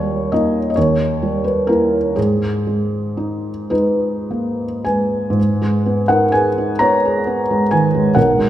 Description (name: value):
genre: classical, romantic nocturne for solo piano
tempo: 34-48 BPM (dotted quarters)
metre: 6/8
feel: rubato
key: G# minor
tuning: A4 = 441 Hz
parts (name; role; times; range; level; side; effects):
- felt-muted upright piano; solo; 0.0-8.5 s; B1 to A#5; -15 LUFS; equal; none
room: wet recital hall reverb, RT60 1.7 s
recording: none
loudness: -15 LUFS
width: side -12 dB against mid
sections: 0.0-5.4 A section; 5.4-8.5 B section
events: none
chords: 0.0 D#7; 0.8 D#7b9; 2.2 G#m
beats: 0.76 | 2.17 3.72 | 5.37 6.81 | 8.16